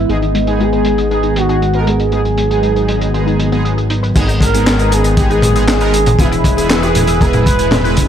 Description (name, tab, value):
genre	synthwave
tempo	118 BPM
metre	4/4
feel	straight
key	G# minor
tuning	A4 = 440 Hz
part	expressive portamento lead	melody	0.0-7.9 s	D#4 to B4	-17 LUFS	right 1 dB	lush chorus, vintage 12-bit sampler grit, tape echo
part	warm analog pad	sustained chords	0.0-8.1 s	D#3 to B4	-20 LUFS	left 1 dB	chorus, sidechain pumping
part	analog pluck	arpeggios	0.0-8.0 s	G#3 to E5	-23 LUFS	left 2 dB	chorus, phaser, tape echo
part	chorused synth bass	bass	0.0-8.1 s	E1 to G#1	-17 LUFS	equal	none
part	analog synth brass	stabs	0.1-8.0 s	G#3 to B4	-20 LUFS	right 3 dB	chorus, tape echo
part	crunchy breakbeat drum kit	drums	0.1-8.1 s	crash cymbal, handclaps, hi-hat, snare drum, toms	-18 LUFS	equal	low-pass filter on hats, low-pass filter on cymbals, low-pass filter on toms, low-pass filter on snare, low-pass filter on room, gated reverb
part	kick drum	drums	4.2-8.1 s	none	-14 LUFS	equal	none
room	light reverb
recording	none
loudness	-11 LUFS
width	side -9 dB against mid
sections	0.0-4.2 A section; 4.2-8.1 B section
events	filter sweep on analog synth pad 0.0-4.2; filter sweep on synth arpeggio sound 0.0-4.2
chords	0.1 G#m; 6.2 E